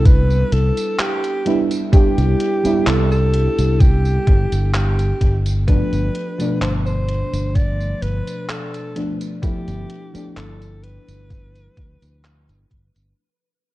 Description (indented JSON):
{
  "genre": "vaporwave",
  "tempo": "64 BPM",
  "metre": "4/4",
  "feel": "swing 53% on 16ths",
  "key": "unclear",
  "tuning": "A4 = 440 Hz",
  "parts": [
    { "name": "breathy alto saxophone", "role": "melody", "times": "0.0-12.7 s", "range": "G4 to D5", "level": "-25 LUFS", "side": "equal", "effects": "vintage 12-bit sampler grit, tape echo" },
    { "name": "mellow FM electric piano", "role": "accompaniment", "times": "0.0-13.2 s", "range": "B2 to G4", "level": "-23 LUFS", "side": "right 1 dB", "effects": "lush chorus, cassette tape" },
    { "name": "fingered electric bass", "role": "bass", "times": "0.0-13.1 s", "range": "G1 to D2", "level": "-18 LUFS", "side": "equal", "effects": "tube saturation" },
    { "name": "detuned 8-bit digital drum machine", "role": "drums", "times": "0.1-13.1 s", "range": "handclaps, hi-hat, tambourine", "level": "-28 LUFS", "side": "equal", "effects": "none" },
    { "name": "electronic kick drum", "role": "drums", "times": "0.1-12.9 s", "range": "none", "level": "-14 LUFS", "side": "equal", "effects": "none" }
  ],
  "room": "little or no reverb",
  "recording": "dark, warm production",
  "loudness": "-16 LUFS",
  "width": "side -17 dB against mid",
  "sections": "0.0-13.2 A section",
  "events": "fade-out 3.2-13.2",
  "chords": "0.0 Cmaj9; 5.7 G9"
}